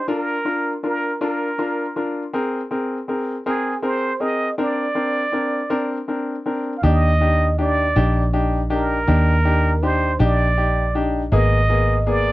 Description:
six-eight pop ballad; 54 BPM (dotted quarters); 6/8; straight; Eb major; A4 = 440 Hz
trumpet with plunger mute; melody; 0.0-12.3 s; Ab4 to F5; -22 LUFS; right 2 dB
clear concert grand piano; accompaniment; 0.1-12.3 s; Bb3 to Bb4; -22 LUFS; left 2 dB
vintage muted fingered electric bass; bass; 6.8-12.3 s; Ab1 to Eb2; -18 LUFS; equal
little or no reverb; dry, close 1970s-style studio recording; -18 LUFS; side -17 dB against mid
0.0-6.8 A section; 6.8-12.3 B section
0.1 Bb; 2.3 Abadd9; 4.6 Bbadd9; 6.8 Ebmaj7; 11.3 Abmadd9
| 0.09 1.21 | 2.34 3.46 | 4.58 5.71 | 6.84 7.97 | 9.09 10.21 | 11.32

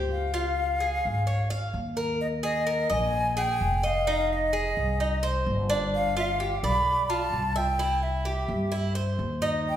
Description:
latin; 129 BPM; 4/4; straight; A4 = 440 Hz
Cuban tres; arpeggios; 0.0-9.8 s; D4 to F5; -29 LUFS; right 1 dB
upright bass; bass; 0.0-9.8 s; F1 to G2; -29 LUFS; equal
breathy jazz flute; melody; 0.1-9.8 s; Eb5 to B5; -28 LUFS; left 1 dB
wet recital hall reverb, RT60 1.7 s; recorded in a church or concert hall; -24 LUFS; side -10 dB against mid
0.0-2.2 A section; 2.2-9.8 B section
0.3 Db; 2.2 Ebsus4; 4.1 Fm7; 5.9 G7; 7.8 C
| 0.35 0.81 1.28 1.75 | 2.21 2.68 3.14 3.61 | 4.08 4.54 5.01 5.47 | 5.94 6.40 6.87 7.33 | 7.80 8.27 8.73 9.20 | 9.66

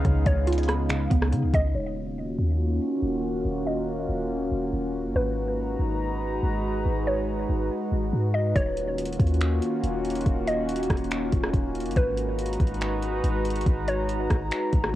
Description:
hip hop, atmospheric cloud-rap; 141 BPM; 4/4; half-time; Eb minor; A4 = 440 Hz
warbly tape-like pad; sustained chords; 0.0-15.0 s; Db3 to Bb5; -28 LUFS; equal; chorus, built-in reverb, sidechain pumping, low-pass filter, cassette tape
mallet-like synth pluck; arpeggios; 0.0-1.7 s; Db3 to Cb6; -30 LUFS; right 3 dB; chorus, phaser, low-pass filter, cassette tape, analog delay
clean 808-style bass; bass; 0.0-14.9 s; Eb1 to Db3; -27 LUFS; equal
smooth R&B drum kit; drums; 0.0-1.6, 8.6-14.9 s; finger snaps, hi-hat, kick drum, rim click; -27 LUFS; equal; overdrive
mallet-like synth pluck; melody; 0.3-14.1 s; Cb5 to Eb5; -31 LUFS; equal; chorus, low-pass filter, analog delay
light reverb; home recording on cassette; -23 LUFS; side -14 dB against mid
0.0-1.7 A section; 1.7-8.6 B section; 8.6-15.0 C section
filter sweep 1.7-8.6
0.0 Db7; 1.7 Ebm7; 5.2 Abm7; 8.6 Ebm7; 12.0 Abm7
| 0.05 0.47 0.90 1.32 | 1.75 2.17 2.60 3.02 | 3.45 3.88 4.30 4.73 | 5.15 5.58 6.00 6.43 | 6.86 7.28 7.71 8.13 | 8.56 8.98 9.41 9.83 | 10.26 10.69 11.11 11.54 | 11.96 12.39 12.81 13.24 | 13.66 14.09 14.52 14.94

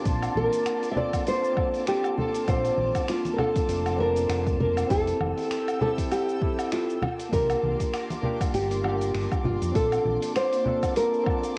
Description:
sunset chillout; 99 BPM; 4/4; swing 56% on 16ths; Bb lydian; A4 = 440 Hz
bell-like tine electric piano; accompaniment; 0.0-11.6 s; Bb3 to A5; -35 LUFS; equal; cassette tape
airy breathy pad; sustained chords; 0.0-11.6 s; Bb3 to E6; -39 LUFS; equal; chorus, cassette tape
wind-like tuned noise texture; texture; 0.0-11.6 s; F4 to A5; -46 LUFS; equal; built-in reverb, cassette tape
hollow-body short-scale fingered electric bass; bass; 0.1-10.2 s; F1 to F2; -33 LUFS; equal
dusty soul sampler-style drum kit; drums; 0.1-11.5 s; finger snaps, hi-hat, shaker, woodblock; -38 LUFS; equal; cassette tape
electronic kick drum; drums; 0.1-11.4 s; -31 LUFS; equal; cassette tape
nylon-string guitar; melody; 0.4-11.6 s; F4 to E5; -28 LUFS; equal; cassette tape, analog delay
congas; percussion; 0.4-10.8 s; -35 LUFS; equal
moderate booth ambience, RT60 0.2 s; home recording on cassette; -26 LUFS; mono
0.0-11.6 A section
0.1 Bbmaj9; 4.9 Fmaj9; 7.0 C9sus4; 9.8 Bbmaj9
| 0.06 0.66 1.27 1.87 | 2.48 3.09 3.69 4.30 | 4.90 5.51 6.12 6.72 | 7.33 7.93 8.54 9.15 | 9.75 10.36 10.96 11.57

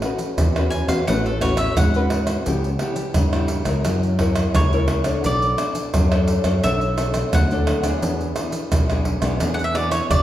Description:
samba and choro; 86 BPM; 4/4; straight; A major; A4 = 440 Hz
nylon-string guitar; accompaniment; 0.0-10.2 s; B2 to C#5; -24 LUFS; left 2 dB
pandeiro, tamborim, maracas and surdo; percussion; 0.0-10.2 s; -22 LUFS; right 1 dB
modern bright fingered electric bass; bass; 0.4-10.2 s; F#1 to G#2; -23 LUFS; equal
mandolin; melody; 0.7-10.2 s; A4 to G#5; -25 LUFS; equal
wet recital hall reverb, RT60 1.5 s; recorded in a church or concert hall; -18 LUFS; side -12 dB against mid
0.0-10.2 A section
mandolin solo 0.0-10.2
0.0 A69; 2.5 C#m7b5; 3.9 F#7; 5.2 Bm9; 8.0 E7
0.38 1.07 1.77 | 2.46 3.16 3.85 4.55 | 5.25 5.94 6.63 7.33 | 8.02 8.72 9.41 10.11

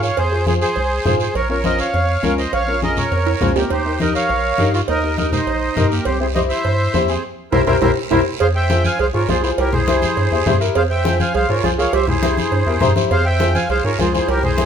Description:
latin, cumbia; 204 BPM; 4/4; straight; F harmonic minor from 8.4 s; A4 = 441 Hz
accordion; melody; 0.0-14.7 s; G4 to Ab5; -20 LUFS; equal; light tremolo tuning
warm upright piano; accompaniment; 0.0-14.7 s; Db4 to Bb5; -22 LUFS; left 4 dB
rubbery square bass; bass; 0.0-14.7 s; Bb1 to Ab2; -21 LUFS; equal
guiro; percussion; 0.0-14.7 s; -31 LUFS; right 7 dB
congas; percussion; 0.2-14.7 s; -24 LUFS; left 3 dB
cowbell and timbales; percussion; 0.2-14.4 s; -25 LUFS; right 7 dB
breathy clarinet; second line; 3.6-14.7 s; Bb3 to C5; -23 LUFS; right 3 dB
moderate large studio reverb, RT60 1.0 s; minimal, uncompressed stereo recording; -15 LUFS; side -8 dB against mid
0.0-8.4 A section; 8.4-14.7 B section
drum fill 3.3-3.7, 7.5-8.4; band accent 7.2-8.4; upright piano fill 12.7-13.1
0.0 Fm; 1.4 Bbm; 3.7 Eb; 6.1 C7; 8.4 Fm; 9.6 C7; 10.8 Fm; 11.9 C7; 13.1 Fm
| 0.17 0.47 0.76 1.06 | 1.35 1.64 1.94 2.23 | 2.53 2.82 3.12 3.41 | 3.71 4.00 4.29 4.59 | 4.88 5.18 5.47 5.76 | 6.06 6.35 6.65 6.94 | 7.23 7.53 7.82 8.12 | 8.41 8.70 9.00 9.29 | 9.59 9.88 10.17 10.47 | 10.76 11.05 11.35 11.64 | 11.94 12.23 12.52 12.82 | 13.11 13.40 13.70 13.99 | 14.29 14.58

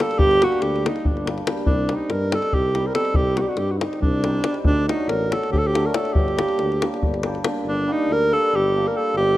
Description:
balkan folk, Balkan wedding band; 281 BPM (eighths); 7/8; straight; G harmonic minor; A4 = 439 Hz
mellow alto saxophone; melody; 0.0-9.4 s; D4 to Bb4; -21 LUFS; right 1 dB
cimbalom; accompaniment; 0.0-9.4 s; F#3 to G4; -27 LUFS; left 2 dB
davul; percussion; 0.0-7.5 s; -23 LUFS; left 1 dB
mellow tuba; bass; 0.2-9.4 s; G1 to G2; -26 LUFS; equal
light reverb, studio reverb; rough home demo mix; -18 LUFS; side -15 dB against mid
0.0-7.6 A section; 7.6-9.4 A section
0.0 Gm; 1.7 Cm; 4.6 D; 6.1 Gm
| 0.19 0.40 0.61 0.82 1.03 1.24 1.46 | 1.67 1.88 2.09 2.30 2.52 2.73 2.94 | 3.15 3.37 3.58 3.79 4.00 4.22 4.43 | 4.64 4.86 5.07 5.28 5.50 5.71 5.92 | 6.14 6.35 6.57 6.78 7.00 7.21 7.42 | 7.64 7.85 8.07 8.28 8.49 8.71 8.92 | 9.14 9.35

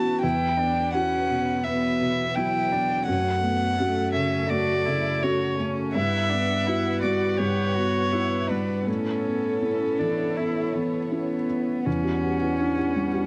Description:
neoclassical piano and strings; 83 BPM; 4/4; rubato; E dorian; A4 = 444 Hz
dark violin; melody; 0.0-11.5 s; A4 to A5; -29 LUFS; equal
warm cello; second line; 0.0-13.3 s; A3 to G4; -32 LUFS; equal; cassette tape
felt-muted upright piano; accompaniment; 0.0-13.3 s; E2 to G4; -29 LUFS; equal; cassette tape
warm chamber string section; sustained chords; 0.0-13.3 s; F#3 to F#5; -37 LUFS; equal; cassette tape
marimba with soft mallets; arpeggios; 11.9-13.2 s; E4 to B4; -37 LUFS; equal
light reverb, small room ambience; home recording on cassette; -25 LUFS; mono
0.0-11.9 A section; 11.9-13.3 B section
0.2 Emadd9; 3.1 F#m; 6.0 Emadd9/G; 8.9 Aadd9; 11.9 Emadd9
| 0.23 0.94 1.66 2.37 | 3.07 3.79 4.50 5.23 | 5.95 6.67 7.39 8.12 | 8.87 9.62 10.37 11.12 | 11.86 12.60

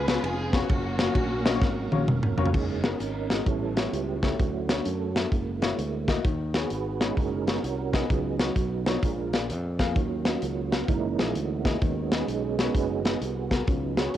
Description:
uptempo gospel; 129 BPM; 4/4; swing 65% on 8ths; F# major; A4 = 440 Hz
warm studio string section; melody; 0.0-2.1 s; A#3 to B4; -30 LUFS; left 1 dB; cassette tape
warm upright piano; accompaniment; 0.0-14.2 s; A2 to E#5; -32 LUFS; left 8 dB; cassette tape
mellow tonewheel organ; sustained chords; 0.0-14.2 s; E3 to E#5; -31 LUFS; right 8 dB; slow rotary speaker, chorus vibrato, cassette tape
fingered electric bass; bass; 0.0-14.2 s; E#1 to F#2; -32 LUFS; equal
modern studio drum kit; drums; 0.1-14.2 s; crash cymbal, hi-hat, kick drum, ride cymbal, snare drum, toms; -26 LUFS; equal
light reverb, studio ambience; home recording on cassette; -24 LUFS; side -12 dB against mid
0.0-2.5 A section; 2.5-14.2 B section
drum fill 1.6-2.5; tonewheel organ solo 2.5-14.2
0.0 C#7; 0.7 F#maj7; 2.5 F#69; 3.5 A7; 4.4 Dmaj7; 5.3 F#7; 6.2 B69; 8.1 C#9sus4; 9.0 A#7; 10.0 D#m9; 10.9 F#13; 11.8 B6
0.24 | 0.70 1.16 1.62 2.08 | 2.54 3.00 3.47 3.93 | 4.39 4.86 5.32 5.78 | 6.25 6.71 7.17 7.64 | 8.10 8.57 9.03 9.49 | 9.96 10.42 10.89 11.35 | 11.82 12.28 12.75 13.21 | 13.68 14.14

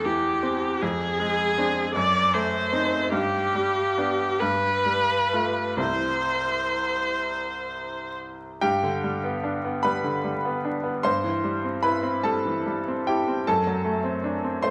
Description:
classical, romantic duo for viola and grand piano; 40-54 BPM (dotted quarters); 6/8; rubato; C major, G major from 8.6 s; A4 = 439 Hz
rich viola; melody; 0.0-8.1 s; G4 to D5; -26 LUFS; equal
bright grand piano; accompaniment; 0.0-14.7 s; C2 to C6; -28 LUFS; equal
moderate recital hall reverb, RT60 1.5 s; vinyl crackle; -25 LUFS; mono
0.0-8.6 A section; 8.6-14.7 B section
0.0 C/E; 0.8 Dm7b5/F; 2.0 F#dim7; 3.1 G; 4.4 G9; 5.8 C; 8.6 G; 11.0 C/G; 13.5 D7/F#
| 0.81 1.95 | 3.12 4.40 | 5.80 7.24 | 8.63 9.85 | 11.04 12.24 | 13.46 14.63

